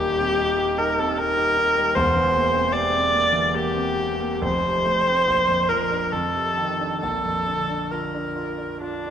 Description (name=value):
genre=classical, romantic duo for viola and grand piano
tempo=58-78 BPM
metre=3/4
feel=rubato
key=Bb major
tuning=A4 = 440 Hz
part: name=warm viola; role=melody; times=0.0-9.1 s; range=D4 to D5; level=-21 LUFS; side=left 1 dB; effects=none
part: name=warm concert grand piano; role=accompaniment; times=0.0-9.1 s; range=Eb1 to G4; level=-26 LUFS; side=right 2 dB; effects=none
room=wet concert hall reverb, RT60 1.9 s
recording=minimal, uncompressed stereo recording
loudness=-19 LUFS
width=side -9 dB against mid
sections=0.0-9.1 A section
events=none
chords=0.0 Cm/Eb; 2.0 C7/E; 4.4 F; 5.3 Bb; 6.1 F6; 7.0 Bb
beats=0.38 1.17 | 1.96 2.73 3.53 | 4.42 5.26 6.11 | 7.01 7.91 8.82